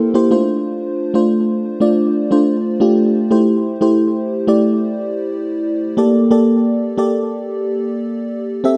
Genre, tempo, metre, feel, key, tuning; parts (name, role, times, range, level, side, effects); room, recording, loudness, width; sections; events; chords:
pop; 90 BPM; 4/4; straight; A4 = 439 Hz
FM electric piano with soft pad layer; solo; 0.0-8.8 s; A3 to E5; -16 LUFS; equal; chorus, tape echo
moderate studio reverb, RT60 0.6 s; dark, warm production; -16 LUFS; mono
0.0-3.3 A section; 3.3-8.8 B section
0.3 Dm7; 3.3 Am7; 6.0 Gmadd9